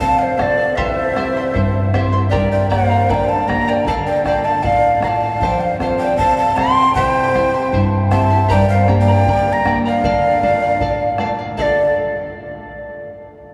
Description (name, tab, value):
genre	andean folk, Andean ensemble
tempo	78 BPM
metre	2/4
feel	straight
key	D minor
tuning	A4 = 440 Hz
part	breathy bright large quena	melody	0.0-11.9 s	D5 to C6	-20 LUFS	equal	none
part	breathy mellow quena	second line	0.0-11.9 s	A4 to G5	-23 LUFS	equal	none
part	charango	accompaniment	0.0-11.9 s	E4 to C6	-26 LUFS	equal	none
part	nylon-string guitar	accompaniment	0.0-11.9 s	G2 to A4	-23 LUFS	equal	none
part	bombo	percussion	0.0-11.9 s	none	-26 LUFS	equal	none
room	wet cathedral reverb, RT60 5.4 s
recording	recorded in a church or concert hall, small room ambience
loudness	-16 LUFS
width	mono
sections	0.0-11.6 A section; 11.6-13.1 B section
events	none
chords	0.0 F; 0.8 C; 2.3 Gm; 3.9 Dm; 5.4 F; 7.0 C; 8.5 Gm; 10.0 Dm